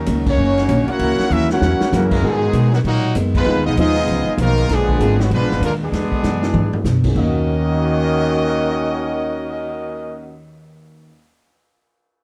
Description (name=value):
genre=jazz, big band swing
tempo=195 BPM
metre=4/4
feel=swing 62% on 8ths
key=Eb minor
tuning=A4 = 441 Hz
part: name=brilliant trombone section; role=sustained chords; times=0.0-2.5 s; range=Gb3 to Bb4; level=-29 LUFS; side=equal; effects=none
part: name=upright bass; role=bass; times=0.0-11.1 s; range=Gb1 to Cb3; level=-22 LUFS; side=equal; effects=none
part: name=picked steel-string acoustic guitar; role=accompaniment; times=0.1-11.1 s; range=Gb2 to Bb4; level=-28 LUFS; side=equal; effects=none
part: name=swinging big-band drum kit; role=drums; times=0.1-9.6 s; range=crash cymbal, cymbal swell, hi-hat, kick drum, ride cymbal, snare drum, toms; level=-27 LUFS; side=equal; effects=none
part: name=bright trumpet section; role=melody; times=0.3-10.4 s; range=Gb3 to Gb5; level=-25 LUFS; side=equal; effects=none
part: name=clear trombone section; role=second line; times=0.3-10.4 s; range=Bb2 to Gb4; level=-23 LUFS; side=equal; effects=none
part: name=dark upright piano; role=accompaniment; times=2.2-11.1 s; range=Eb2 to F5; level=-28 LUFS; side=equal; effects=none
room=small room ambience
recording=none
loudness=-18 LUFS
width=mono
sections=0.0-2.2 A section; 2.2-7.2 B section; 7.2-9.6 C section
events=band accent 0.2, 3.3; drum fill 1.3-1.9, 6.2-6.9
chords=0.0 Ebm7; 1.0 Gb7; 2.2 Abm9; 3.5 Fm7b5; 4.7 Bb7b9; 5.9 E7; 7.2 Ebm7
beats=0.08 0.38 0.69 | 1.00 1.31 1.61 1.92 | 2.23 2.54 2.85 3.15 | 3.46 3.77 4.08 4.39 | 4.70 5.00 5.31 5.62 | 5.93 6.24 6.55 6.85 | 7.16 7.47 7.78 8.09 | 8.40 8.71 9.01 9.32